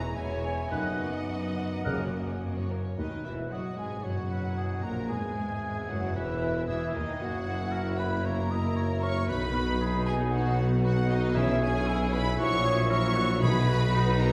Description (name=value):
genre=classical, dramatic, fast romantic movement for symphony orchestra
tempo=114 BPM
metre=4/4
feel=rubato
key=B major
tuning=A4 = 440 Hz
part: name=warm symphonic violin section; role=melody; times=0.0-14.3 s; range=D#5 to C#6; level=-40 LUFS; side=equal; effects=none
part: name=rich symphonic violin section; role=second line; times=0.0-14.3 s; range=A#3 to D#5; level=-41 LUFS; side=equal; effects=none
part: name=mellow French horn section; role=sustained chords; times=0.0-13.6 s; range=D#3 to E4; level=-40 LUFS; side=equal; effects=none
part: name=concert harp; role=arpeggios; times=0.0-14.3 s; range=E2 to E6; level=-38 LUFS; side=equal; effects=none
part: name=rich symphonic cello section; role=bass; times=0.0-14.3 s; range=D#2 to B2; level=-38 LUFS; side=equal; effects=none
part: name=rich symphonic double bass section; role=bass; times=0.0-14.3 s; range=E1 to D#2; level=-35 LUFS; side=equal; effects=none
part: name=rich chamber viola section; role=accompaniment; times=0.2-14.3 s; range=D#3 to D#5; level=-40 LUFS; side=equal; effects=none
part: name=mellow hollow concert flute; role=second line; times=0.7-14.3 s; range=D#5 to F#6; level=-39 LUFS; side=equal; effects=none
part: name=warm oboe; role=second line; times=0.7-14.3 s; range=D#4 to D#5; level=-41 LUFS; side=equal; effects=none
part: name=mellow bassoon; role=accompaniment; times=0.7-2.1 s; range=C#3 to D#3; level=-43 LUFS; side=equal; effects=none
part: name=timpani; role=percussion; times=0.7-2.7, 9.3-14.2 s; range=F#2 to B2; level=-38 LUFS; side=equal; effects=none
part: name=clear tuba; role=bass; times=3.0-14.3 s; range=E1 to D#2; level=-37 LUFS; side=equal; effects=none
room=wet recital hall reverb, RT60 1.3 s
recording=heard from further back in the room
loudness=-28 LUFS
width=mono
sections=0.0-3.0 A section; 3.0-14.3 B section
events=none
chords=0.0 C#m/E; 0.7 B/F#; 1.9 F#; 3.0 B; 5.1 Emaj7; 7.2 F#7; 9.3 B; 11.4 C#m7/B; 12.4 F#7/A#; 13.4 B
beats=0.16 | 0.72 1.29 1.86 2.42 | 2.98 3.52 4.05 4.57 | 5.10 5.62 6.15 6.68 | 7.21 7.73 8.25 8.76 | 9.29 9.80 10.32 10.84 | 11.35 11.88 12.39 12.91 | 13.43 13.95